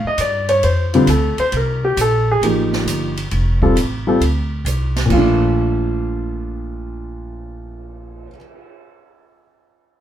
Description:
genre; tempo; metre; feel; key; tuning
jazz piano trio; 134 BPM; 4/4; swing 68% on 8ths; Bb major; A4 = 435 Hz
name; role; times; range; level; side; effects
warm grand piano; melody; 0.0-8.4 s; Bb2 to Eb5; -17 LUFS; left 1 dB; none
upright bass; bass; 0.0-8.3 s; F1 to G2; -20 LUFS; right 1 dB; none
open jazz drum kit; drums; 0.2-8.6 s; crash cymbal, cymbal swell, hi-hat, kick drum, ride cymbal, snare drum; -27 LUFS; right 2 dB; none
room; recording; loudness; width
moderate studio reverb, RT60 0.7 s; heard from further back in the room; -15 LUFS; side -11 dB against mid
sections
0.0-5.1 A section; 5.1-8.7 B section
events
none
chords
0.0 Dm7; 1.5 Cm7; 3.3 F; 5.1 Bbmaj7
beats
0.18 0.63 1.07 | 1.52 1.97 2.42 2.86 | 3.31 3.76 4.21 4.65 | 5.10 5.55 6.00 6.44 | 6.89 7.34 7.79 8.24

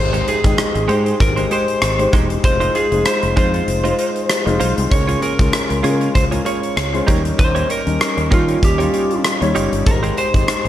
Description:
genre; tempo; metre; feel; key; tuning
1980s-style pop; 97 BPM; 4/4; swing 55% on 16ths; Ab major; A4 = 440 Hz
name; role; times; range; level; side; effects
lightly driven lead guitar; melody; 0.0-10.7 s; F4 to Db5; -21 LUFS; right 1 dB; tape echo
warm concert grand piano; accompaniment; 0.0-10.7 s; Ab2 to G5; -21 LUFS; left 4 dB; none
fingered electric bass; bass; 0.0-10.7 s; Fb1 to Eb3; -21 LUFS; equal; none
direct-recorded clean electric guitar; riff; 0.1-10.7 s; Ab3 to Db5; -25 LUFS; right 6 dB; analog chorus
huge arena drum kit; drums; 0.1-10.7 s; hi-hat, kick drum, rim click; -18 LUFS; equal; gated reverb
room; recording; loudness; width
light reverb; none; -14 LUFS; side -12 dB against mid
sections
0.0-10.7 A section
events
none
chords
0.0 Abmaj7; 2.4 Fm7; 4.9 Db6; 7.1 Eb7; 9.9 Abmaj7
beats
0.58 1.20 1.82 | 2.44 3.06 3.68 4.30 | 4.92 5.53 6.15 6.77 | 7.39 8.01 8.63 9.24 | 9.86 10.48

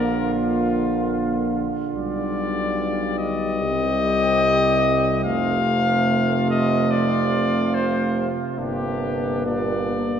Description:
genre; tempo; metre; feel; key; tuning
classical, brass quintet; 72 BPM; 4/4; rubato; unclear; A4 = 444 Hz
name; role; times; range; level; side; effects
clear cornet; melody; 0.0-10.2 s; F4 to F5; -24 LUFS; left 3 dB; none
mellow trumpet; second line; 0.0-10.0 s; D4 to G4; -30 LUFS; right 4 dB; none
clear trombone; accompaniment; 0.0-10.0 s; Bb2 to D3; -28 LUFS; right 4 dB; none
mellow French horn; accompaniment; 0.0-10.2 s; G3 to Bb3; -25 LUFS; equal; none
bright bass trombone; bass; 0.0-10.2 s; F1 to C2; -26 LUFS; equal; none
room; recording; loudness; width
wet scoring stage reverb, RT60 1.8 s; heard from further back in the room, nothing above 10.5 kHz; -19 LUFS; side -8 dB against mid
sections
0.0-10.2 A section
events
none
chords
0.0 Bb; 2.0 G7/B; 3.6 Cm; 5.2 F; 8.6 Gm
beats
0.33 1.15 | 1.96 2.77 3.60 4.43 | 5.25 6.08 6.91 7.74 | 8.59 9.47

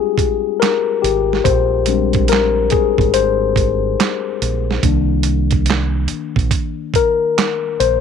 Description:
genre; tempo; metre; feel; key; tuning
R&B, neo-soul; 71 BPM; 4/4; swing 63% on 16ths; unclear; A4 = 441 Hz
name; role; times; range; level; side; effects
mellow tine electric piano; accompaniment; 0.0-8.0 s; Eb3 to C5; -16 LUFS; left 10 dB; none
dusty soul sampler-style drum kit; drums; 0.2-8.0 s; handclaps, hi-hat, kick drum, snare drum; -19 LUFS; right 6 dB; none
deep dub fingered electric bass; bass; 1.0-8.0 s; Ab1 to C2; -19 LUFS; right 2 dB; none
room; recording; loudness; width
light reverb; 1960s-style stereo with parts hard left and right; -14 LUFS; side -7 dB against mid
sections
0.0-8.0 A section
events
tine electric piano solo 0.0-8.0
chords
0.0 Bb13; 4.8 Cm7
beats
0.61 | 1.45 2.30 3.14 3.99 | 4.83 5.68 6.52 7.37

